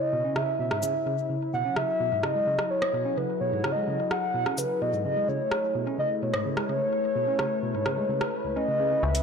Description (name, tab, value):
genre	IDM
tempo	128 BPM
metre	4/4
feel	straight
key	unclear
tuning	A4 = 436 Hz
part	warbly nostalgic lead	melody	0.0-9.2 s	B4 to F#5	-27 LUFS	left 1 dB	chorus, ping-pong delay
part	warm analog pad	sustained chords	0.0-9.2 s	C#3 to F#5	-32 LUFS	left 1 dB	wide subtle chorus
part	tine electric piano	arpeggios	0.1-9.0 s	C#2 to C#4	-33 LUFS	right 2 dB	low-pass filter, tape echo
part	booming analog drum machine	drums	0.4-9.2 s	cabasa, hi-hat, rim click	-33 LUFS	right 1 dB	soft clipping on snare, ping-pong delay
part	metallic FM bass	bass	9.0-9.2 s	C#2	-24 LUFS	equal	none
room	wet plate reverb, RT60 2.0 s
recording	blown-out, overdriven recording, overdrive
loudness	-24 LUFS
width	side -6 dB against mid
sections	0.0-9.0 A section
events	filter sweep on analog synth pad 0.0-9.0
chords	0.0 C#m7; 1.5 F#m7; 5.3 Amaj9